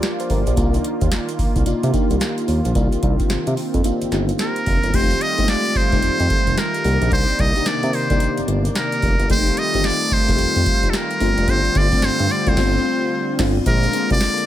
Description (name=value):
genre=R&B, new jack swing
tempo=110 BPM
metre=4/4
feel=swing 62% on 16ths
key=C minor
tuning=A4 = 440 Hz
part: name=FM electric piano with soft pad layer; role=accompaniment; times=0.0-14.5 s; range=Ab3 to D5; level=-24 LUFS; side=left 2 dB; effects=chorus
part: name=brassy analog pad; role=sustained chords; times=0.0-14.5 s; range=C3 to D5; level=-26 LUFS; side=right 1 dB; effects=chorus
part: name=booming analog drum machine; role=drums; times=0.0-14.5 s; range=crash cymbal, hi-hat, kick drum, snare drum, tambourine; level=-22 LUFS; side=equal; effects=none
part: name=tube shaker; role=percussion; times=0.0-14.5 s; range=none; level=-41 LUFS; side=right 12 dB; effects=none
part: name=smooth synth bass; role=bass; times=0.3-14.2 s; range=F1 to C3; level=-22 LUFS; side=equal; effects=none
part: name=trumpet with metal mute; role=melody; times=4.4-14.5 s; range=A4 to Eb5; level=-21 LUFS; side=equal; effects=digital delay
room=little or no reverb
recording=none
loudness=-16 LUFS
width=side -12 dB against mid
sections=0.0-4.9 A section; 4.9-13.7 B section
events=band accent 12.6-13.7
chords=0.0 Gm7; 0.6 Cm11; 4.9 F9; 6.8 Cm9; 9.3 F9; 11.2 G7sus4; 13.7 Bb7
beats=0.03 | 0.57 1.12 1.66 2.21 | 2.75 3.30 3.85 4.39 | 4.94 5.48 6.03 6.57 | 7.12 7.66 8.21 8.76 | 9.30 9.85 10.39 10.94 | 11.48 12.03 12.57 13.12 | 13.66 14.21